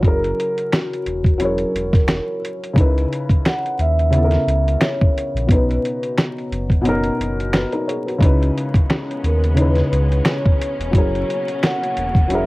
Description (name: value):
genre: lo-fi hip hop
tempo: 88 BPM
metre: 4/4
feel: swing 56% on 16ths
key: C# dorian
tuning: A4 = 440 Hz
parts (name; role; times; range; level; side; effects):
- felt-muted upright piano; accompaniment; 0.0-12.5 s; B2 to C#5; -22 LUFS; left 1 dB; cassette tape, low-pass filter
- sub bass with octave; bass; 0.0-12.5 s; E1 to D#2; -20 LUFS; equal; none
- dusty soul sampler-style drum kit; drums; 0.0-12.5 s; finger snaps, hi-hat, kick drum, snare drum; -17 LUFS; equal; cassette tape
- vibraphone with soft mallets; melody; 0.1-12.5 s; F#4 to F#5; -23 LUFS; equal; low-pass filter, tape echo
- rich studio string section; sustained chords; 8.2-12.5 s; B2 to C#4; -29 LUFS; equal; low-pass filter, cassette tape
room: light reverb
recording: home recording on cassette, vinyl crackle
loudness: -16 LUFS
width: side -20 dB against mid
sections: 0.0-12.5 A section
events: kick muted 6.8-8.2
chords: 0.0 F#7; 2.8 C#m7; 5.5 Bmaj7; 8.2 C#m7; 10.9 F#7